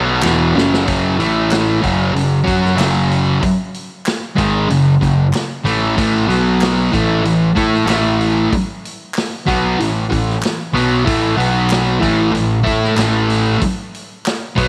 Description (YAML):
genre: garage rock duo or trio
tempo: 94 BPM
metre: 4/4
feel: straight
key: unclear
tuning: A4 = 441 Hz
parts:
  - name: thick fuzz guitar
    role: riff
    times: 0.0-14.7 s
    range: E2 to A4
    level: -17 LUFS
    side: equal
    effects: distortion
  - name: growling picked electric bass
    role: bass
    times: 0.0-14.7 s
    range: E1 to A2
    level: -23 LUFS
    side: equal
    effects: overdrive, tube saturation
  - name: group handclap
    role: percussion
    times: 0.2-14.4 s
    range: none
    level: -30 LUFS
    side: equal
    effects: none
  - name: vintage drum kit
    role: drums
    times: 0.3-14.7 s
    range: hi-hat, kick drum, snare drum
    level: -25 LUFS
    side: equal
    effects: none
room: moderate echo chamber reverb, RT60 2.2 s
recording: none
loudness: -16 LUFS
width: mono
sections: 0.9-14.7 A section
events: drum fill 0.2-0.9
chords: 0.0 E5; 0.9 F#5; 1.2 A5; 1.8 F#m; 6.0 A5; 6.3 B5; 6.9 A5; 11.4 B5; 12.0 A5